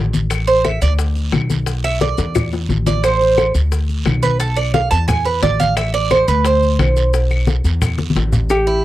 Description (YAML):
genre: latin, Cuban son and guajira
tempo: 176 BPM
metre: 4/4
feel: straight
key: A minor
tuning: A4 = 440 Hz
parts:
  - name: upright bass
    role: bass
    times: 0.0-8.8 s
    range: A1 to E2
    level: -17 LUFS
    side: equal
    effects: none
  - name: congas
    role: percussion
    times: 0.1-8.8 s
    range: none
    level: -21 LUFS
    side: left 2 dB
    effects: none
  - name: guiro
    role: percussion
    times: 0.1-8.5 s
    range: none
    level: -32 LUFS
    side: right 7 dB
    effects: none
  - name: maracas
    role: percussion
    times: 0.1-8.8 s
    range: none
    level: -35 LUFS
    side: left 8 dB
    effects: none
  - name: bongos and cowbell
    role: percussion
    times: 0.3-8.7 s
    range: none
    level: -25 LUFS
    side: left 8 dB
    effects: none
  - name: claves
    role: percussion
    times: 0.3-8.7 s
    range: none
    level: -29 LUFS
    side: left 5 dB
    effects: none
  - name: Cuban tres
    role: arpeggios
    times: 0.5-8.8 s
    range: E4 to A5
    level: -16 LUFS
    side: right 4 dB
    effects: none
  - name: hollow-body jazz guitar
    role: melody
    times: 8.5-8.8 s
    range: G4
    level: -15 LUFS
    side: equal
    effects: none
room: light reverb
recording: dry, close 1970s-style studio recording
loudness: -14 LUFS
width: side -14 dB against mid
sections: 0.0-8.5 A section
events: Cuban tres solo 0.0-8.5; drum fill 2.2-3.0, 8.0-8.5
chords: 0.3 Amadd11; 1.0 Bm; 1.7 Bmadd11; 2.4 Asus4; 3.0 Am; 3.7 Bm; 4.4 Bm7b5; 5.1 Dm69; 5.8 Amadd11; 6.5 Bm; 7.1 Bsus4; 7.8 A5